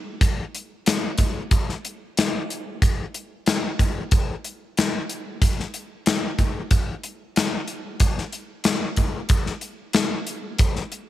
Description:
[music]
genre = rock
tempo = 92 BPM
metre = 4/4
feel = straight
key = none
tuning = none
[part]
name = gated 80s drum kit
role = drums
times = 0.2-11.1 s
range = hi-hat, kick drum, snare drum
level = -21 LUFS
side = equal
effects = none
[sound]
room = light reverb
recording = 1960s-style stereo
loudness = -21 LUFS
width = side -13 dB against mid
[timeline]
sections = 0.0-11.1 A section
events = none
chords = none

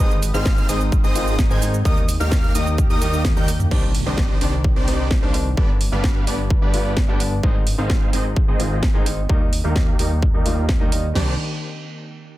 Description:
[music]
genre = EDM, festival progressive house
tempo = 129 BPM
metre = 4/4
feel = straight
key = C minor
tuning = A4 = 435 Hz
[part]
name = warm baby grand piano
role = accompaniment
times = 0.0-11.3 s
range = G2 to F4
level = -28 LUFS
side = left 1 dB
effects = sidechain pumping, tape echo
[part]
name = lush unison pad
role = sustained chords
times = 0.0-11.4 s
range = Eb3 to B4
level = -31 LUFS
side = equal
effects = chorus, sidechain pumping
[part]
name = wide unison lead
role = arpeggios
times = 0.0-3.5 s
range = Eb6 to Ab6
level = -28 LUFS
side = right 1 dB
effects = cassette tape, sidechain pumping, tape echo
[part]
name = supersaw chords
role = riff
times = 0.0-11.3 s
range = Bb3 to Ab5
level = -28 LUFS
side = right 2 dB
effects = sidechain pumping, low-pass filter, tape echo
[part]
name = fat analog bass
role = bass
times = 0.0-11.4 s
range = G1 to Ab2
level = -24 LUFS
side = equal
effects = sidechain pumping
[part]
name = house drum kit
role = drums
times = 0.0-11.0 s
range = crash cymbal, hi-hat, shaker, snare drum, toms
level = -27 LUFS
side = right 1 dB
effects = none
[part]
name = big-room dance drum kit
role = drums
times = 0.5-11.3 s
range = crash cymbal, kick drum, snare drum, toms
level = -19 LUFS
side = equal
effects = none
[part]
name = impact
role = sound effects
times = 3.7-5.6 s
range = none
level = -32 LUFS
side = equal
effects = none
[sound]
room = digital ambience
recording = dense, heavily limited modern master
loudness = -17 LUFS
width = side -16 dB against mid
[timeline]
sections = 0.0-3.7 A section; 3.7-11.2 B section; 11.2-12.4 C section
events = drop 0.0-3.7; drum fill 3.2-3.7; impact 3.7-5.6; filter sweep on supersaw synth 3.7-11.2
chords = 0.0 Ab; 1.9 Eb; 3.7 Cmadd9; 5.6 G; 7.4 Ab; 9.3 Eb; 11.2 Cmadd9

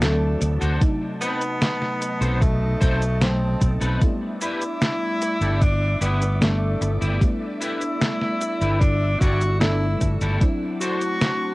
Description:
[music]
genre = vaporwave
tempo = 75 BPM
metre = 4/4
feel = straight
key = G major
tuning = A4 = 441 Hz
[part]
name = breathy tenor saxophone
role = melody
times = 0.0-11.5 s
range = A3 to F#4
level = -27 LUFS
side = equal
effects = cassette tape, tape echo
[part]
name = FM electric piano with soft pad layer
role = accompaniment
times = 0.0-11.5 s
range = C3 to A4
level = -28 LUFS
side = equal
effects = analog chorus, cassette tape, tape echo
[part]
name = soft string machine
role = sustained chords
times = 0.0-11.5 s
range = F#4 to E6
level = -37 LUFS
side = equal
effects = ensemble chorus, cassette tape
[part]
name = fretless electric bass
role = bass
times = 0.0-10.4 s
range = G1 to D2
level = -22 LUFS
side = equal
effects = tube saturation
[part]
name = detuned 8-bit digital drum machine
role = drums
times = 0.0-11.4 s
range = cabasa, hi-hat, snare drum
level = -24 LUFS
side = equal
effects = none
[part]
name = clean electric guitar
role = riff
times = 0.4-11.0 s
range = C4 to D5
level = -30 LUFS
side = left 1 dB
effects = ensemble chorus, cassette tape, tape echo
[part]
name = electronic kick drum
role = drums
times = 0.8-10.6 s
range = none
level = -19 LUFS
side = equal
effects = overdrive
[sound]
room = light reverb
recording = home recording on cassette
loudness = -19 LUFS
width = side -21 dB against mid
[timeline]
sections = 0.0-11.5 A section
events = none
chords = 0.0 D7; 0.8 B7b9; 4.0 G6; 10.4 D7

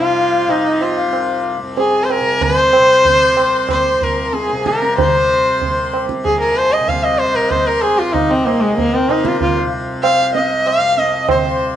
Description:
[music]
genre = indian classical, Hindustani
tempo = 94 BPM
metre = 4/4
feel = straight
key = C raga malkauns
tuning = A4 = 440 Hz
[part]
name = rich sarangi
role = melody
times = 0.0-11.6 s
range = Ab3 to F5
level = -14 LUFS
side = equal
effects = plate reverb
[part]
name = pedal harmonium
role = second line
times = 0.0-11.7 s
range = Bb4 to C6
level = -23 LUFS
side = left 6 dB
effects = none
[part]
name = tanpura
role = drone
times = 0.0-11.8 s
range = C2 to C3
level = -24 LUFS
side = left 1 dB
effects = none
[part]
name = tabla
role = percussion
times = 0.5-11.5 s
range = none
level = -21 LUFS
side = right 5 dB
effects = none
[sound]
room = moderate small room reverb, RT60 0.6 s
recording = nothing above 10.9 kHz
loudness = -13 LUFS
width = side -10 dB against mid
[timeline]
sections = 0.0-11.8 A section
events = none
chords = none

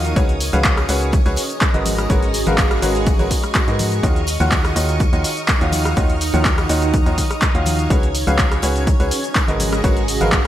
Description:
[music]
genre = piano house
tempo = 124 BPM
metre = 4/4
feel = straight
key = unclear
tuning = A4 = 440 Hz
[part]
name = string machine, violins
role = sustained chords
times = 0.0-10.5 s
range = Gb4 to Ab6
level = -27 LUFS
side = left 1 dB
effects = ensemble chorus, sidechain pumping
[part]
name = clear upright piano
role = riff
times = 0.0-10.5 s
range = Eb3 to Gb5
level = -22 LUFS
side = equal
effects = sidechain pumping, digital delay
[part]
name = organ-like FM bass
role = bass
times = 0.0-10.5 s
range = Ab1 to Ab2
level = -21 LUFS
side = equal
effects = sidechain pumping
[part]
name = punchy analog drum machine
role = drums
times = 0.0-10.4 s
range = handclaps, hi-hat, rim click, shaker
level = -22 LUFS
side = equal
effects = overdrive, gated reverb
[part]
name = granular cloud pad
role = texture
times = 0.0-10.5 s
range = Db4 to Bb5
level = -27 LUFS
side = right 2 dB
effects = built-in reverb, sidechain pumping
[part]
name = tambourine and congas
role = percussion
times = 0.1-10.4 s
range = none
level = -30 LUFS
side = left 3 dB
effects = none
[part]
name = electronic kick drum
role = drums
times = 0.2-10.4 s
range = none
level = -18 LUFS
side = equal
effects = overdrive
[sound]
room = light reverb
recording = bright 1980s-style digital production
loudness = -15 LUFS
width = side -12 dB against mid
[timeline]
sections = 0.0-10.5 A section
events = none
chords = 0.2 Abm11; 4.0 Ebm9; 7.9 Abm11

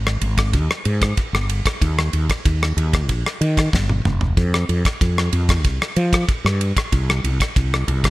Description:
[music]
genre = electric jazz fusion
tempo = 94 BPM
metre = 4/4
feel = straight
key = unclear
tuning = A4 = 440 Hz
[part]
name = mellow fretless electric bass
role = bass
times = 0.0-8.1 s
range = F1 to F3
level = -19 LUFS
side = equal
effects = none
[part]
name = damped 70s drum kit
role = drums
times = 0.1-8.1 s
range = kick drum, ride cymbal, rim click, snare drum, toms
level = -20 LUFS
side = equal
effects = none
[sound]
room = little or no reverb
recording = bright 1980s-style digital production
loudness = -17 LUFS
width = side -18 dB against mid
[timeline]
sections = 0.0-8.1 A section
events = drum fill 3.7-4.4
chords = none

